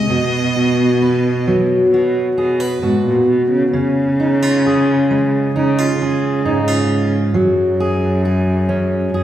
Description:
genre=folk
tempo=66 BPM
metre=4/4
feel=straight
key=Db major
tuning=A4 = 441 Hz
part: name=rich violin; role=melody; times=0.0-1.5 s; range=Eb5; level=-23 LUFS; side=equal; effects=none
part: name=fingerpicked steel-string acoustic guitar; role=accompaniment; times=0.0-9.2 s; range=Ab2 to Cb5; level=-16 LUFS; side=right 1 dB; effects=none
part: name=warm cello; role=bass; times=0.0-9.2 s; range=Gb2 to Db3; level=-17 LUFS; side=equal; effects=none
room=wet recital hall reverb, RT60 1.6 s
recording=recorded in a church or concert hall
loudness=-13 LUFS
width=side -11 dB against mid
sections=0.0-9.2 A section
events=none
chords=0.1 Cb; 3.7 Dbadd9; 7.4 Gbsus2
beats=| 0.11 1.01 1.92 2.83 | 3.75 4.65 5.56 6.46 | 7.36 8.25 9.14

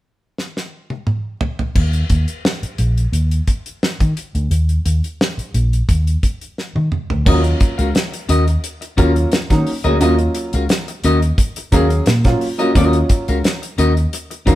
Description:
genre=funk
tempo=87 BPM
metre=4/4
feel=straight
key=Eb minor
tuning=A4 = 440 Hz
part: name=damped 70s drum kit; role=drums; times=0.4-14.6 s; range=crash cymbal, hi-hat, kick drum, snare drum, toms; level=-18 LUFS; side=equal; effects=none
part: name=vintage muted fingered electric bass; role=bass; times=1.8-14.6 s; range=Bb1 to Eb3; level=-16 LUFS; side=equal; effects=none
part: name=clean electric guitar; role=accompaniment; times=7.3-14.6 s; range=Db4 to F5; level=-19 LUFS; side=left 2 dB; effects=none
part: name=dark upright piano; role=stabs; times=7.3-14.6 s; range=F3 to Ab4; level=-20 LUFS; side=right 2 dB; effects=none
room=light reverb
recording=band playing live in one room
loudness=-15 LUFS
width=side -15 dB against mid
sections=0.0-1.8 A section; 1.8-7.3 B section; 7.3-14.6 C section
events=drum fill 0.4-1.8, 6.6-7.3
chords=0.0 N.C.; 1.8 Eb5; 7.3 Ebm7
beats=0.38 1.07 | 1.76 2.44 3.13 3.82 | 4.51 5.20 5.89 6.58 | 7.26 7.95 8.64 9.32 | 10.01 10.70 11.38 12.07 | 12.75 13.44 14.12

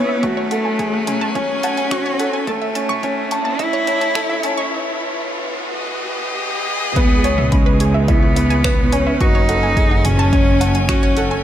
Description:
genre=piano and strings electronica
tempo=107 BPM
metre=4/4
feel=straight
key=unclear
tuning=A4 = 440 Hz
part: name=clear cello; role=melody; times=0.0-11.4 s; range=G#3 to E4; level=-21 LUFS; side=equal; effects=ping-pong delay
part: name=bright string quartet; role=sustained chords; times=0.0-11.4 s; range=A2 to G#5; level=-26 LUFS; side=left 1 dB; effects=sidechain pumping
part: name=warm upright piano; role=riff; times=0.0-11.4 s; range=B3 to A5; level=-22 LUFS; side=right 1 dB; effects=none
part: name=riser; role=sound effects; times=0.1-7.0 s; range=none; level=-30 LUFS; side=equal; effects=none
part: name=wide unison pluck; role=arpeggios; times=0.1-11.4 s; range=B4 to E6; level=-26 LUFS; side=right 2 dB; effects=sidechain pumping, ping-pong delay
part: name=deep house drum kit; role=drums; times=0.2-11.3 s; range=finger snaps, hi-hat, toms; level=-27 LUFS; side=equal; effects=studio reverb
part: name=electronic kick drum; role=drums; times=0.2-11.0 s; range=none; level=-18 LUFS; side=equal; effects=studio reverb
part: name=rich symphonic double bass section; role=bass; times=7.0-11.4 s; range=F#1 to C#2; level=-19 LUFS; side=equal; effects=sidechain pumping
room=light reverb, studio reverb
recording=high-pass filter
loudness=-15 LUFS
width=side -11 dB against mid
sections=0.0-7.0 A section; 7.0-11.4 B section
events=build-up 0.0-7.0; filter sweep 0.0-7.0; riser 0.1-7.0; break 4.7-7.0; drop 7.0-11.4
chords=0.2 F#madd9; 2.5 A; 4.7 Emaj7; 7.0 C#m7; 9.2 F#madd9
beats=| 0.23 0.80 1.35 1.92 | 2.48 3.04 3.60 4.16 | 4.72 5.28 5.84 6.40 | 6.96 7.52 8.08 8.64 | 9.21 9.77 10.33 10.89

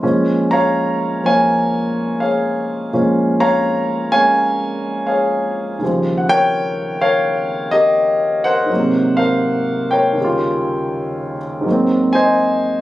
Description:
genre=solo jazz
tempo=83 BPM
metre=4/4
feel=swing 67% on 8ths, rubato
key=Ab major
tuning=A4 = 439 Hz
part: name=warm concert grand piano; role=solo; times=0.0-12.8 s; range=Eb2 to Bb5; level=-14 LUFS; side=equal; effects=none
room=moderate studio ambience, RT60 0.5 s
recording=recorded on a phone in the room, studio reverb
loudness=-14 LUFS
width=side -15 dB against mid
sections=0.0-11.7 A section; 11.7-12.8 A section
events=none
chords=0.0 Bbm7; 5.8 Eb9; 8.7 Ab9; 10.2 Eb9; 11.7 Ab9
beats=| 0.02 0.76 1.49 2.21 | 2.93 3.65 4.37 5.09 | 5.81 6.53 7.25 7.97 | 8.70 9.43 10.17 10.91 | 11.65 12.39

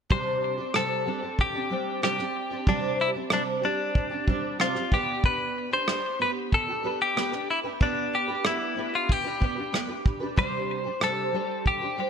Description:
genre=acoustic pop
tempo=94 BPM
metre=4/4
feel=straight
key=unclear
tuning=A4 = 440 Hz
part: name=direct-recorded clean electric guitar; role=melody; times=0.1-12.1 s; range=D4 to C5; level=-27 LUFS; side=left 3 dB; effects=wide subtle chorus, ping-pong delay
part: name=fingerpicked twelve-string acoustic guitar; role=accompaniment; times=0.1-12.1 s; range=C3 to C5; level=-30 LUFS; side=right 2 dB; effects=ensemble chorus
part: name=soft brush drum kit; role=drums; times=0.1-11.8 s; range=kick drum, rim click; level=-26 LUFS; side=equal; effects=none
room=light reverb, studio ambience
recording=bright 1980s-style digital production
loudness=-24 LUFS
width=side -7 dB against mid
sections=0.1-12.1 A section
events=none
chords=0.1 Csus2; 4.9 G/B; 10.4 Csus2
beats=| 0.11 0.75 1.39 2.03 | 2.67 3.31 3.96 4.60 | 5.24 5.88 6.53 7.17 | 7.81 8.45 9.09 9.73 | 10.38 11.02 11.66

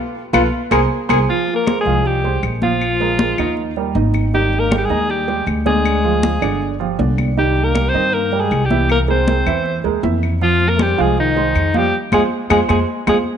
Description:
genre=Afro-Cuban jazz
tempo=158 BPM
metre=4/4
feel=straight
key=F minor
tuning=A4 = 440 Hz
part: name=warm trombone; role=second line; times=0.3-13.2 s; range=Eb3 to G#4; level=-24 LUFS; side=left 9 dB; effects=none
part: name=warm baby grand piano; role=accompaniment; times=0.3-13.2 s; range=D3 to F5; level=-21 LUFS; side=right 11 dB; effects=none
part: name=upright bass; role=bass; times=0.3-13.2 s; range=G1 to G2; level=-20 LUFS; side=equal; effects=none
part: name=claves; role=percussion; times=0.3-13.2 s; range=none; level=-26 LUFS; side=left 10 dB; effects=none
part: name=congas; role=percussion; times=0.3-13.2 s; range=none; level=-22 LUFS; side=left 3 dB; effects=none
part: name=bright alto saxophone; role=melody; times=1.3-13.2 s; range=Eb4 to C5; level=-19 LUFS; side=equal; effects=none
room=moderate echo chamber reverb, RT60 1.9 s, studio ambience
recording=1960s-style stereo with parts hard left and right, nothing above 11.0 kHz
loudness=-14 LUFS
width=side -8 dB against mid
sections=0.0-1.3 A section; 1.3-13.4 B section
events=band accent 0.0-1.3, 11.9-13.4; trombone solo 0.0-1.3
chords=0.0 F; 0.5 G#add9/B#; 1.3 Fmadd9; 2.8 Bb5; 3.6 Eb; 4.3 Ab5; 5.9 Ddim; 6.6 G5; 7.4 Cm7; 8.9 C7b13; 10.4 Fm7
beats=0.15 0.53 0.91 | 1.29 1.67 2.05 2.43 | 2.81 3.19 3.57 3.95 | 4.33 4.71 5.09 5.47 | 5.85 6.23 6.61 6.99 | 7.37 7.75 8.13 8.51 | 8.89 9.28 9.65 10.04 | 10.41 10.80 11.18 11.56 | 11.94 12.32 12.70 13.08

